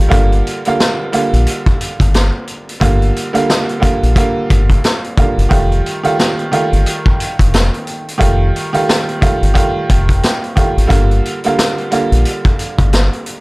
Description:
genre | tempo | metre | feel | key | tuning
hip hop, boom-bap hip-hop | 89 BPM | 4/4 | swing 60% on 16ths | G minor | A4 = 440 Hz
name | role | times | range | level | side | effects
bright upright piano | accompaniment | 0.0-13.4 s | D3 to F4 | -17 LUFS | right 2 dB | none
deep dub fingered electric bass | bass | 0.0-13.1 s | F1 to Bb1 | -13 LUFS | equal | none
vintage drum kit | drums | 0.1-13.4 s | hi-hat, kick drum, snare drum | -15 LUFS | equal | none
room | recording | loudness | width
little or no reverb | none | -11 LUFS | side -23 dB against mid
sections
0.0-13.4 A section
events
none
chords
0.1 Gm7; 5.5 F9; 10.9 Gm7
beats
| 0.12 0.79 1.47 2.14 | 2.81 3.49 4.16 4.84 | 5.51 6.18 6.86 7.53 | 8.21 8.88 9.55 10.23 | 10.90 11.58 12.25 12.93

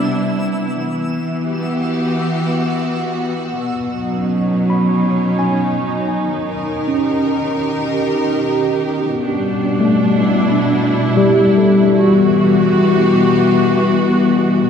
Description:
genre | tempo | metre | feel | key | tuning
ambient | 65 BPM | 3/4 | straight | unclear | A4 = 438 Hz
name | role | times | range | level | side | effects
clear symphonic string section | sustained chords | 0.0-14.7 s | B2 to A#4 | -16 LUFS | equal | none
bowed-like drone | drone | 0.0-14.7 s | B2 to B3 | -27 LUFS | equal | built-in reverb
twinkling granular texture | texture | 0.0-3.6 s | E6 | -33 LUFS | right 1 dB | built-in reverb
tine electric piano | arpeggios | 4.7-14.7 s | G3 to B5 | -16 LUFS | left 2 dB | medium stereo tremolo, tape echo
room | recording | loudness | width
wet concert hall reverb, RT60 2.4 s | dark, warm production | -14 LUFS | side -7 dB against mid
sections
0.0-3.6 A section; 3.6-14.7 B section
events
fade-in on synth drone 3.6-14.7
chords
0.0 Cmaj7; 0.8 Emadd9; 3.6 B; 6.3 D#7; 9.1 G69/B; 11.9 Emadd9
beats
| 0.80 1.72 2.64 | 3.56 4.49 5.41 | 6.33 7.26 8.18 | 9.10 10.03 10.95 | 11.87 12.80 13.72 | 14.64

